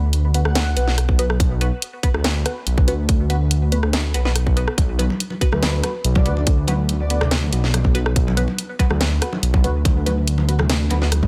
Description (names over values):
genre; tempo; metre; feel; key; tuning
deep dubstep; 142 BPM; 4/4; half-time; B minor; A4 = 441 Hz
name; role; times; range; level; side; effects
dark detuned saw bass; bass; 0.0-11.3 s; B1 to D2; -21 LUFS; equal; tube saturation
garage drum kit; drums; 0.1-11.3 s; hi-hat, rim click, snare drum, toms; -26 LUFS; equal; small room ambience
filtered dub chord stab; stabs; 0.3-11.1 s; B3 to B4; -31 LUFS; equal; phaser, cassette tape, dub echo
breathy flute-like synth lead; melody; 0.5-0.9, 5.5-7.3 s; B4 to F#5; -34 LUFS; equal; ensemble chorus, cassette tape, dub echo
electronic kick drum; drums; 1.1-11.3 s; none; -20 LUFS; equal; small room ambience
congas; percussion; 4.8-11.3 s; none; -29 LUFS; equal; dub echo
room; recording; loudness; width
little or no reverb; dense, heavily limited modern master; -19 LUFS; mono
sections
0.0-11.3 A section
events
none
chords
0.0 B5